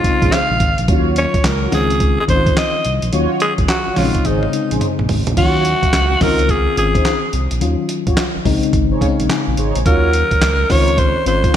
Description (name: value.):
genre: R&B, new jack swing.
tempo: 107 BPM.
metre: 4/4.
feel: swing 64% on 16ths.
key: Eb dorian.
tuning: A4 = 442 Hz.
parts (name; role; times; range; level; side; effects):
growling alto saxophone; melody; 0.0-11.6 s; Eb4 to F5; -18 LUFS; equal; ping-pong delay.
FM electric piano with auto-pan; accompaniment; 0.0-11.6 s; Db3 to Ab5; -21 LUFS; left 5 dB; none.
dusty soul sampler-style drum kit; drums; 0.0-11.6 s; crash cymbal, handclaps, hi-hat, kick drum, snare drum, toms; -18 LUFS; right 1 dB; none.
mellow synth brass; stabs; 0.2-11.6 s; Db4 to Db5; -24 LUFS; right 2 dB; chorus.
smooth gliding synth bass; bass; 0.2-11.5 s; Ab1 to Eb2; -19 LUFS; equal; none.
room: light reverb, digital ambience.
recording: bright 1980s-style digital production.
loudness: -13 LUFS.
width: side -10 dB against mid.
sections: 0.0-5.4 A section; 5.4-11.6 B section.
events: drum fill 4.2-5.4; FM electric piano fill 8.7-9.9.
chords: 0.0 Bbm11; 0.9 Ebm9; 1.7 Dbmaj9; 3.1 Ebm9; 4.0 Bbm11; 5.4 Ebm9; 6.2 Dbmaj9; 7.6 Ebm9; 8.5 Bbm11; 9.9 Ebm9; 10.7 Dbmaj9.